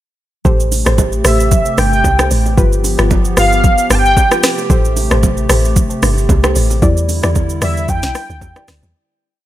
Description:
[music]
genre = amapiano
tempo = 113 BPM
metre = 4/4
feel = swing 55% on 16ths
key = A minor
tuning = A4 = 440 Hz
[part]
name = soft round pluck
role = stabs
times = 0.4-8.7 s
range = E4 to D5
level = -22 LUFS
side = left 1 dB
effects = chorus, digital delay
[part]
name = hollow soft pad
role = sustained chords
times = 0.5-8.9 s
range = C3 to G4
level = -21 LUFS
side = right 2 dB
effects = chorus, sidechain pumping
[part]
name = woody log drum bass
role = bass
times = 0.5-8.9 s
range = G1 to E2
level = -15 LUFS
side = equal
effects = none
[part]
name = smooth R&B drum kit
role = drums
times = 0.5-8.9 s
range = hi-hat, kick drum, rim click, shaker, snare drum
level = -15 LUFS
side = equal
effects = overdrive
[part]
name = congas and bongos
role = percussion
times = 0.5-8.9 s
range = none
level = -23 LUFS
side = right 7 dB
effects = none
[part]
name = warm velvety synth lead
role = melody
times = 1.3-4.4, 7.6-8.7 s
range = E5 to A5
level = -16 LUFS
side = equal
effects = chorus, digital delay
[sound]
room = little or no reverb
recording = none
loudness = -10 LUFS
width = side -13 dB against mid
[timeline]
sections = 0.5-8.9 drop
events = drop 0.5-8.9; fade-out 6.8-8.9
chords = 0.5 Am7; 2.6 G7; 4.4 Am7; 6.8 Em7

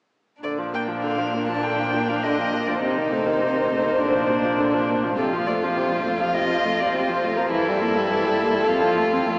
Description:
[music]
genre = quick classical-period movement for string quartet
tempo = 102 BPM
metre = 4/4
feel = straight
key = Bb major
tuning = A4 = 440 Hz
[part]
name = dark violin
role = melody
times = 0.4-9.4 s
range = A4 to A5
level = -24 LUFS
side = equal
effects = none
[part]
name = rich violin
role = second line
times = 0.4-9.4 s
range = D4 to F4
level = -24 LUFS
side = equal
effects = none
[part]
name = rich viola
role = accompaniment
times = 0.4-9.4 s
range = C3 to C4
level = -24 LUFS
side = equal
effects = none
[part]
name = rich cello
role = bass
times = 0.4-9.4 s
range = F2 to C3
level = -31 LUFS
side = equal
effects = none
[sound]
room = wet cathedral reverb, RT60 6.6 s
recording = heard from further back in the room, small speaker sound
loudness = -19 LUFS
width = side -28 dB against mid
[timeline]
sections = 0.4-9.4 A section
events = none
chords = 0.4 Bb; 2.8 Adim/C; 4.0 Bb; 5.2 F; 7.5 Edim/G; 8.7 F

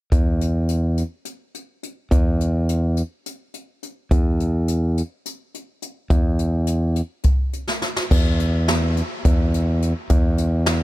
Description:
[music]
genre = progressive instrumental, band music in an uneven meter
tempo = 210 BPM (eighths)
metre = 7/8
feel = straight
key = unclear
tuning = A4 = 439 Hz
[part]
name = modern bright fingered electric bass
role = bass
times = 0.1-10.8 s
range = E2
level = -19 LUFS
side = equal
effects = none
[part]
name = jazz brush drum kit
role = drums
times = 0.1-10.8 s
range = crash cymbal, hi-hat, kick drum, snare drum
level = -20 LUFS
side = equal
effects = none
[sound]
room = little or no reverb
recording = none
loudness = -18 LUFS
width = side -17 dB against mid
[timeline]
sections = 0.1-8.1 A section; 8.1-10.8 B section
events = drum fill 7.7-8.1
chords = none

